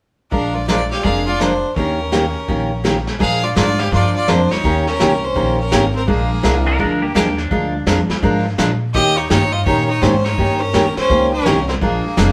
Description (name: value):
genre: country, western swing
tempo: 167 BPM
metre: 4/4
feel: swing 64% on 8ths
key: unclear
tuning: A4 = 441 Hz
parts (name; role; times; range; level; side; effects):
- clear fiddle; melody; 0.3-12.3 s; Ab4 to F5; -24 LUFS; equal; none
- rich fiddle; second line; 0.3-12.3 s; Bb3 to Ab4; -26 LUFS; equal; none
- picked steel-string acoustic guitar; accompaniment; 0.3-12.3 s; Eb3 to Bb4; -20 LUFS; equal; none
- upright bass; bass; 0.3-12.3 s; F1 to Bb2; -23 LUFS; equal; none
- vintage brush drum kit; drums; 0.3-12.3 s; brushed snare drum, hi-hat, kick drum, snare drum; -25 LUFS; equal; none
- pedal steel guitar; second line; 6.7-8.4 s; Bb3 to Bb4; -26 LUFS; equal; none
room: wet studio reverb, RT60 0.7 s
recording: band playing live in one room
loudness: -17 LUFS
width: mono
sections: 0.3-3.2 A section; 3.2-12.3 B section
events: none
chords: 0.3 Bb7; 1.8 Eb7; 3.2 Bb7; 4.6 Eb7; 6.1 Bb7; 8.9 Eb7; 11.8 Bb7